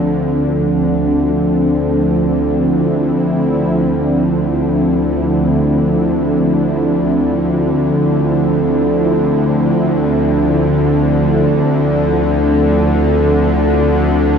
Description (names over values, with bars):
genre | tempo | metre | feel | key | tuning
dark ambient drone | free time | none | none | D minor | A4 = 437 Hz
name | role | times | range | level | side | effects
sweeping resonant pad | sustained chords | 0.0-14.4 s | F3 to E4 | -16 LUFS | equal | chorus
bowed-like drone | drone | 0.0-14.4 s | D2 to D3 | -14 LUFS | equal | built-in reverb
bronze singing bowl | texture | 0.0-14.4 s | C5 | -35 LUFS | left 3 dB | none
room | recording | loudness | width
wet echo chamber reverb, RT60 2.7 s | none | -12 LUFS | side -7 dB against mid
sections
0.0-14.4 A section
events
none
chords
0.0 Dmadd9